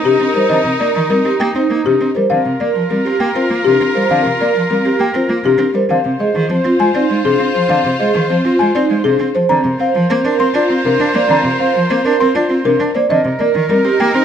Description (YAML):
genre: classical, minimalist pattern music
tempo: 100 BPM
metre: 3/4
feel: straight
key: C minor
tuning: A4 = 442 Hz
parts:
  - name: clear oboe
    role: second line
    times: 0.0-14.2 s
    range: Eb4 to C5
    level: -22 LUFS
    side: right 2 dB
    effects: none
  - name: warm cello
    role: accompaniment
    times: 0.0-14.2 s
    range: C3 to D4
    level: -18 LUFS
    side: right 1 dB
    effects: none
  - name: rich studio string section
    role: sustained chords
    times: 0.0-14.2 s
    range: Eb4 to C5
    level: -24 LUFS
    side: left 4 dB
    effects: none
  - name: vibraphone with soft mallets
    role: arpeggios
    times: 0.0-14.2 s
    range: C4 to D5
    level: -17 LUFS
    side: right 5 dB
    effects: none
  - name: folk marimba with soft mallets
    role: melody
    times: 0.1-14.2 s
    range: G4 to C6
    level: -17 LUFS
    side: left 6 dB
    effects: none
room: little or no reverb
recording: close, detailed microphones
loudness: -12 LUFS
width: side -8 dB against mid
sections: 0.0-14.2 A section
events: none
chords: 0.0 Cm7; 2.3 Gm7; 5.9 Ab6; 9.5 Bbsus2; 13.1 Cm7